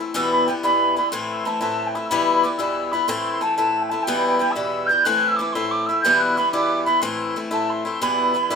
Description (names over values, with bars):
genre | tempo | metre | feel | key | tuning
celtic folk, Celtic jig | 122 BPM (dotted quarters) | 6/8 | straight | E minor | A4 = 442 Hz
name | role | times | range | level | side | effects
picked swing-style acoustic guitar | accompaniment | 0.0-8.6 s | E2 to E4 | -22 LUFS | left 2 dB | none
mellow hollow wooden whistle | melody | 0.2-8.6 s | G5 to G6 | -20 LUFS | right 1 dB | none
room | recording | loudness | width
moderate studio reverb, RT60 0.5 s | minimal, uncompressed stereo recording | -18 LUFS | side -6 dB against mid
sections
0.0-1.1 A section; 1.1-8.6 B section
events
none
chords
0.1 Em; 1.1 Am; 2.1 Em; 3.1 Am; 4.1 Em; 5.1 Am; 6.0 Em; 7.0 Am; 8.0 Em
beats
| 0.15 0.64 | 1.13 1.62 | 2.11 2.60 | 3.09 3.58 | 4.07 4.56 | 5.05 5.54 | 6.03 6.52 | 7.01 7.51 | 8.00 8.49